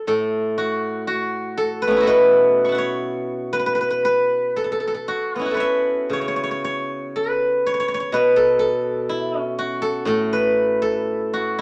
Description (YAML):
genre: chinese traditional, Chinese solo plucked strings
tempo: 57-64 BPM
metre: 2/4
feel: rubato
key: A gong mode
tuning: A4 = 440 Hz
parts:
  - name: steel-string zither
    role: solo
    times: 0.0-11.6 s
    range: A2 to C#6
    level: -21 LUFS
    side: equal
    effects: none
room: moderate studio reverb, RT60 0.8 s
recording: none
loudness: -21 LUFS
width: mono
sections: 0.0-11.6 A section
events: none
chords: none